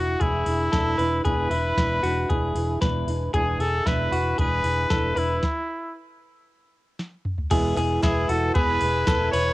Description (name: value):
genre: jangly indie pop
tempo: 115 BPM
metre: 4/4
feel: straight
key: unclear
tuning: A4 = 440 Hz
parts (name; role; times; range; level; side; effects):
- clear trumpet; melody; 0.0-9.5 s; E4 to C#5; -25 LUFS; equal; cassette tape
- fingerpicked old ladder-braced acoustic guitar; accompaniment; 0.0-9.5 s; E2 to E4; -30 LUFS; right 3 dB; cassette tape
- direct-recorded clean electric guitar; arpeggios; 0.0-9.5 s; E4 to B4; -27 LUFS; left 2 dB; cassette tape
- vintage muted fingered electric bass; bass; 0.0-9.5 s; E1; -27 LUFS; equal; none
- soft vintage rhythm box; drums; 0.2-9.5 s; crash cymbal, hi-hat, kick drum, ride cymbal, snare drum, toms; -26 LUFS; equal; cassette tape
- bright upright piano; accompaniment; 7.5-9.5 s; G#3 to G#4; -35 LUFS; right 4 dB; none
- string machine, full ensemble; sustained chords; 7.5-9.5 s; B4 to E6; -39 LUFS; equal; none
- group handclap; percussion; 7.8-9.2 s; none; -41 LUFS; right 4 dB; none
room: moderate studio ambience, RT60 0.5 s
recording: home recording on cassette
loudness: -21 LUFS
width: side -17 dB against mid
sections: 0.0-7.5 A section; 7.5-9.5 B section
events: stop 5.4-7.5; drum fill 7.0-7.5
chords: 0.0 E7; 7.5 E